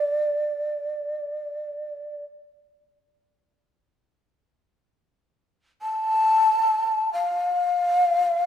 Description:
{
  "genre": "japanese traditional, Japanese chamber music",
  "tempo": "free time",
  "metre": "none",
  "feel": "none",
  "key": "D hirajoshi",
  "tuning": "A4 = 440 Hz",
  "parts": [
    { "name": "breathy mellow long shakuhachi", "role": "solo", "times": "0.0-8.5 s", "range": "D5 to A5", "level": "-21 LUFS", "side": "left 1 dB", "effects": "none" }
  ],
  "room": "moderate concert hall reverb, RT60 1.8 s",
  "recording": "minimal, uncompressed stereo recording",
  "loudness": "-21 LUFS",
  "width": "side -9 dB against mid",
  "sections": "0.0-3.7 A section; 3.7-8.5 A section",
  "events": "none",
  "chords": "none"
}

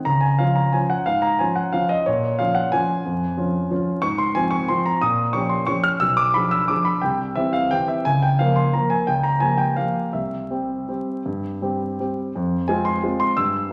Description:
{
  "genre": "classical, piano waltz",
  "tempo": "156-192 BPM",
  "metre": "3/4",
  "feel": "rubato",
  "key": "F minor from 4.0 s",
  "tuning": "A4 = 441 Hz",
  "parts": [
    { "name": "warm concert grand piano", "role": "solo", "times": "0.0-13.7 s", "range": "B1 to F6", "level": "-21 LUFS", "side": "equal", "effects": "none" }
  ],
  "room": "wet recital hall reverb, RT60 1.5 s",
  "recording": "vinyl crackle",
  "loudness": "-21 LUFS",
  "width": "mono",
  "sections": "0.0-12.4 A section; 12.4-13.7 B section",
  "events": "none",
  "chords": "0.1 Db; 2.1 Bbm7; 4.0 Fm/Ab; 5.0 Gm7b5/Bb; 6.0 Bdim7; 7.0 C; 8.1 Bbm/Db; 9.1 Gm7b5/Db; 10.1 C; 12.4 Fm"
}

